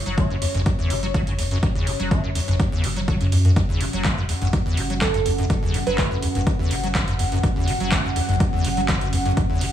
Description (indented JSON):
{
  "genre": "acid house",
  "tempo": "124 BPM",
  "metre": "4/4",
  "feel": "straight",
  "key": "unclear",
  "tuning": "A4 = 440 Hz",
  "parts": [
    { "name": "dark analog pad", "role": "sustained chords", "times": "0.0-9.7 s", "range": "F#3 to F#5", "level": "-28 LUFS", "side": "equal", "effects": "chorus, sidechain pumping" },
    { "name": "acid bass, square", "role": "riff", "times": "0.1-9.7 s", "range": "F#1 to A3", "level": "-24 LUFS", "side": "left 1 dB", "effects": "tube saturation, ensemble chorus, cassette tape" },
    { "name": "warm sub bass", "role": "bass", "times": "0.1-9.7 s", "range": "F#1 to F#2", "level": "-26 LUFS", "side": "equal", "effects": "tube saturation, sidechain pumping" },
    { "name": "booming analog drum machine", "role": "drums", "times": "0.1-9.7 s", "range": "handclaps, hi-hat", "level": "-29 LUFS", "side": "right 1 dB", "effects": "overdrive" },
    { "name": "electronic kick drum", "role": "drums", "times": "0.2-9.5 s", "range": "none", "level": "-22 LUFS", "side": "equal", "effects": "overdrive" },
    { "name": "glassy wavetable pluck", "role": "melody", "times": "5.0-6.1 s", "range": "A4 to B4", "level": "-28 LUFS", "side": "right 6 dB", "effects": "chorus, dub echo" }
  ],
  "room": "light reverb",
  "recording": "studio reverb",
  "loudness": "-19 LUFS",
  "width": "side -11 dB against mid",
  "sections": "0.0-9.7 A section",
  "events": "none",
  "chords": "0.0 F#5",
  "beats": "0.18 0.66 1.14 | 1.63 2.11 2.60 3.08 | 3.56 4.05 4.53 5.01 | 5.50 5.98 6.47 6.95 | 7.43 7.92 8.40 8.89 | 9.37"
}